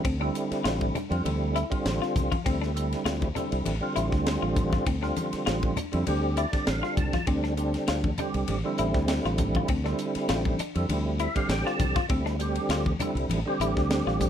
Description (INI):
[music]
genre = electric jazz fusion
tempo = 100 BPM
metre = 4/4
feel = swing 54% on 16ths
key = D minor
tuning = A4 = 442 Hz
[part]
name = percussive tonewheel organ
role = accompaniment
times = 0.0-14.3 s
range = D3 to A5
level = -29 LUFS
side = right 2 dB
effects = slow rotary speaker, overdrive, chorus vibrato
[part]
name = clean electric guitar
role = stabs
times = 0.0-14.2 s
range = C4 to F4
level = -32 LUFS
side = left 7 dB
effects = analog chorus
[part]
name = modern bright fingered electric bass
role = bass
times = 0.0-14.3 s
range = A1 to F2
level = -29 LUFS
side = equal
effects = none
[part]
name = tight funk drum kit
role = drums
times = 0.0-14.3 s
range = hi-hat, kick drum, ride cymbal, snare drum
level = -31 LUFS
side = equal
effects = none
[part]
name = congas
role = percussion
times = 0.8-14.3 s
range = none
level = -34 LUFS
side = left 3 dB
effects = none
[sound]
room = light reverb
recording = none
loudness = -24 LUFS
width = side -9 dB against mid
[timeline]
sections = 0.0-14.3 A section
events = tonewheel organ fill 6.1-7.3, 10.9-12.1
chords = 0.0 Dm7